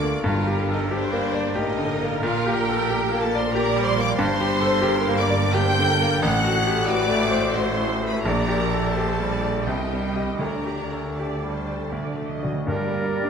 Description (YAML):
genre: classical, romantic movement for piano and orchestra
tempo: 77-94 BPM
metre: 3/4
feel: rubato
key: G minor from 4.2 s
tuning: A4 = 440 Hz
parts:
  - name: clear concert grand piano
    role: melody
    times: 0.0-13.3 s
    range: A1 to Eb5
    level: -24 LUFS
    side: left 2 dB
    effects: none
  - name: warm studio violin section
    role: melody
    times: 0.0-13.3 s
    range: D5 to G6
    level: -30 LUFS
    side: left 3 dB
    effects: none
  - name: warm studio violin section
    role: second line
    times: 0.0-13.3 s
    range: D4 to G5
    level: -29 LUFS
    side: left 1 dB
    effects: none
  - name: warm studio viola section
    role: accompaniment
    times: 0.0-13.3 s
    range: D4 to Eb5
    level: -30 LUFS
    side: right 3 dB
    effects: none
  - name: rich studio double bass section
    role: bass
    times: 0.0-13.3 s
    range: G1 to G2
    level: -30 LUFS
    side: right 4 dB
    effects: none
  - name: warm studio cello section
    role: bass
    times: 0.0-13.3 s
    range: G2 to Bb3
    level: -30 LUFS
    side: right 2 dB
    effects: none
  - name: timpani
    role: percussion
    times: 0.3-1.2, 10.4-13.3 s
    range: G2 to D3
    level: -32 LUFS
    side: right 1 dB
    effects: none
  - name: clear clarinet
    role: second line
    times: 12.7-13.3 s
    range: Bb4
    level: -32 LUFS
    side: right 1 dB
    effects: none
  - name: hollow concert flute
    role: second line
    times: 12.7-13.3 s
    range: D5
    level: -32 LUFS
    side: left 1 dB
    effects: none
  - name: warm oboe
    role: second line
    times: 12.7-13.3 s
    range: Bb4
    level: -32 LUFS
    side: right 1 dB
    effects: none
  - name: mellow bassoon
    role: accompaniment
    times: 12.7-13.3 s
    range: G3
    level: -31 LUFS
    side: right 5 dB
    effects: none
  - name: warm French horn section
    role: sustained chords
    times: 12.7-13.3 s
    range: D4 to Bb4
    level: -32 LUFS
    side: equal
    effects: none
room: wet scoring stage reverb, RT60 1.8 s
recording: none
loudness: -20 LUFS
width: side -6 dB against mid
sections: 0.0-12.7 A section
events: timpani fill 11.9-12.7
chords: 0.2 Gm; 2.2 Gm/Bb; 4.2 Gm; 6.2 F#dim/A; 8.2 Gm/Bb; 9.7 Cm; 10.4 Dsus4; 11.9 D; 12.7 Gm